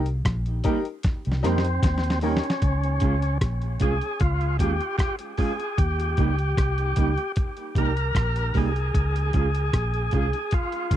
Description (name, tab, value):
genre	roots reggae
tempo	76 BPM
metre	4/4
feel	straight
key	Db lydian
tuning	A4 = 439 Hz
part	bright upright piano	stabs	0.0-2.4 s	Eb4 to Bb4	-29 LUFS	left 8 dB	none
part	vintage muted fingered electric bass	bass	0.0-11.0 s	Bb1 to F2	-25 LUFS	equal	none
part	dusty soul sampler-style drum kit	drums	0.1-11.0 s	hi-hat, kick drum, rim click, snare drum	-24 LUFS	equal	none
part	mellow electric guitar	accompaniment	0.7-11.0 s	G3 to Ab4	-31 LUFS	right 6 dB	tape echo
part	overdriven tonewheel organ	melody	1.5-11.0 s	C4 to Bb4	-28 LUFS	equal	fast rotary speaker, tape echo
room	little or no reverb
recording	dry, close 1970s-style studio recording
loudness	-22 LUFS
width	side -12 dB against mid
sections	0.0-2.6 A section; 2.6-11.0 B section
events	drum fill 1.0-2.6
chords	0.0 Eb; 2.6 Db; 5.8 Eb; 8.9 Db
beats	0.25 1.04 1.83 | 2.62 3.41 4.20 4.99 | 5.78 6.57 7.36 8.15 | 8.94 9.73 10.52